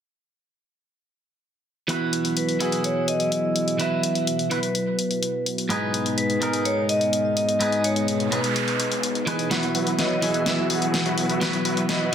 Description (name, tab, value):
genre	EDM, festival progressive house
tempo	126 BPM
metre	4/4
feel	straight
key	unclear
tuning	A4 = 441 Hz
part	clean electric guitar	accompaniment	1.9-12.1 s	G#2 to B4	-26 LUFS	right 1 dB	digital delay
part	lush unison pad	sustained chords	1.9-12.1 s	B2 to G#4	-29 LUFS	left 2 dB	chorus
part	big-room dance drum kit	drums	1.9-12.0 s	hi-hat, snare drum	-27 LUFS	left 2 dB	none
part	vibraphone with hard mallets	melody	2.4-12.1 s	B4 to F#5	-26 LUFS	right 1 dB	digital delay
part	noise sweep	sound effects	8.0-9.5 s	none	-30 LUFS	right 4 dB	none
part	big supersaw lead	riff	9.5-12.1 s	F#3 to E5	-26 LUFS	equal	low-pass filter, digital delay
room	moderate digital room reverb, RT60 1.0 s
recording	dense, heavily limited modern master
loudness	-21 LUFS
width	side -8 dB against mid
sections	1.9-9.5 A section; 9.5-12.1 B section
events	filter sweep on analog synth pad 1.9-9.5; noise sweep 8.0-9.5; build-up 9.5-12.1; drum fill 9.5-12.1; filter sweep on supersaw synth 9.5-12.1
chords	1.9 Esus2; 5.7 G#m; 9.5 Esus2